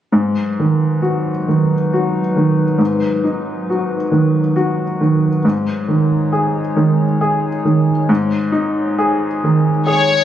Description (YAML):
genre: neoclassical piano and strings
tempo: 68 BPM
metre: 3/4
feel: rubato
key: unclear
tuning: A4 = 438 Hz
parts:
  - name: clear upright piano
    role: accompaniment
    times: 0.1-10.2 s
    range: Ab2 to Ab4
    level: -15 LUFS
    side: right 1 dB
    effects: none
  - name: warbly tape-like pad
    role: sustained chords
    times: 0.4-10.2 s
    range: Gb3 to Db5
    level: -21 LUFS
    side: left 3 dB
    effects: chorus, built-in reverb
  - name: warm chamber violin section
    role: melody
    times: 9.9-10.2 s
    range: Db5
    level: -13 LUFS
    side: left 5 dB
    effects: none
room: light reverb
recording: recorded on a phone in the room, studio reverb, nothing above 10.4 kHz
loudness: -14 LUFS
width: side -11 dB against mid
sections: 0.1-10.2 A section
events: none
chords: 0.1 Abm7; 5.4 Dbsus2/Ab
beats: | 0.12 1.03 1.92 | 2.80 3.68 4.56 | 5.44 6.32 7.21 | 8.09 8.99 9.89